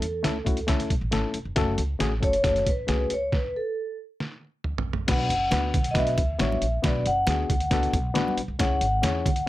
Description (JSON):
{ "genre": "uptempo 1960s-style soul", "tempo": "136 BPM", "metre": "4/4", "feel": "straight", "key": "unclear", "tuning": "A4 = 441 Hz", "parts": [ { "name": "vibraphone with soft mallets", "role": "melody", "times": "0.0-9.5 s", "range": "A4 to F#5", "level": "-27 LUFS", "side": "equal", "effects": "none" }, { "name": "barky reed electric piano", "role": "accompaniment", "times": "0.0-9.3 s", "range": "A3 to C#5", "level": "-30 LUFS", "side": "left 4 dB", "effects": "overdrive" }, { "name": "upright bass", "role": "bass", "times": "0.0-9.4 s", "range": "E1 to E2", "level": "-29 LUFS", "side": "equal", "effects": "none" }, { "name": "trip hop sampler-style drum kit", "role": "drums", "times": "0.0-9.5 s", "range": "crash cymbal, hi-hat, kick drum, snare drum, toms", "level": "-26 LUFS", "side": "equal", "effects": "none" }, { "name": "congas", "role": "percussion", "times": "5.1-9.4 s", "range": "none", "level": "-35 LUFS", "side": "right 4 dB", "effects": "none" } ], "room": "light reverb", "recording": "none", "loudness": "-22 LUFS", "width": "side -16 dB against mid", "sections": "0.0-5.1 A section; 5.1-9.5 B section", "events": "stop 3.3-5.1; drum fill 4.2-5.1", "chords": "0.0 A; 1.6 F#m; 3.3 N.C.; 5.1 Bm; 8.6 C#m", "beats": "0.24 0.68 1.12 | 1.56 2.00 2.44 2.88 | 3.32 3.76 4.20 4.64 | 5.08 5.52 5.96 6.40 | 6.84 7.28 7.72 8.16 | 8.60 9.04 9.47" }